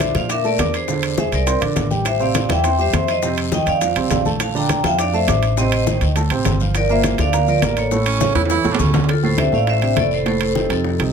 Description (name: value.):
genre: latin, salsa.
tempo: 205 BPM.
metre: 4/4.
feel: straight.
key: D minor.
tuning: A4 = 440 Hz.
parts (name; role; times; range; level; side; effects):
vibraphone with medium hard mallets; melody; 0.0-11.0 s; F4 to Bb5; -20 LUFS; equal; none.
dark baby grand piano; accompaniment; 0.0-11.1 s; A2 to D6; -23 LUFS; right 6 dB; none.
upright bass; bass; 0.0-11.1 s; F1 to Bb2; -21 LUFS; equal; none.
bongos; percussion; 0.0-11.1 s; none; -29 LUFS; left 8 dB; none.
congas; percussion; 0.0-11.1 s; none; -26 LUFS; left 4 dB; none.
guiro; percussion; 0.0-11.1 s; none; -34 LUFS; left 7 dB; none.
maracas; percussion; 0.0-9.1 s; none; -33 LUFS; left 8 dB; none.
timbales; percussion; 0.0-11.1 s; none; -25 LUFS; right 9 dB; none.
breathy baritone saxophone; second line; 8.1-9.1 s; C#4 to E4; -22 LUFS; right 8 dB; slapback echo.
room: light reverb.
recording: close, detailed microphones.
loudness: -15 LUFS.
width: side -6 dB against mid.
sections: 0.0-9.1 A section; 9.1-11.1 B section.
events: drum fill 8.4-9.1.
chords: 0.0 Bbmaj7; 0.9 E7alt; 2.1 Am7; 3.2 F7; 4.4 Bbmaj7; 5.6 Adim; 6.2 D5; 6.7 Gm9; 7.9 A; 9.1 Dm7; 10.3 F.